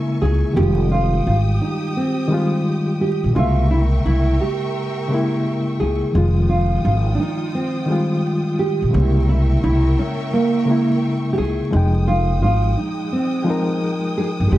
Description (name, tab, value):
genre	lo-fi hip hop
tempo	86 BPM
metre	4/4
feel	swing 66% on 16ths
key	F minor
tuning	A4 = 440 Hz
part	barky reed electric piano	accompaniment	0.0-14.6 s	Db3 to G5	-21 LUFS	left 1 dB	fast tremolo, cassette tape
part	warm studio string section	sustained chords	0.0-14.6 s	Ab3 to Eb6	-30 LUFS	equal	none
part	nylon-string guitar	melody	0.2-14.6 s	Bb3 to Ab4	-22 LUFS	right 2 dB	plate reverb
part	upright bass	bass	0.2-14.6 s	F1 to Db2	-17 LUFS	equal	none
room	moderate studio reverb, RT60 0.6 s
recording	dark, warm production, vinyl crackle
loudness	-16 LUFS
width	side -15 dB against mid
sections	0.0-14.6 A section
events	none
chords	0.0 C7b9b13 (rootless); 0.6 Fm9; 3.3 C7b9b13; 6.1 Fm9; 8.9 C7b9b13; 11.7 Fm9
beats	| 0.56 1.25 1.95 2.65 | 3.35 4.04 4.74 5.44 | 6.14 6.83 7.53 8.23 | 8.93 9.63 10.32 11.02 | 11.72 12.42 13.11 13.81 | 14.51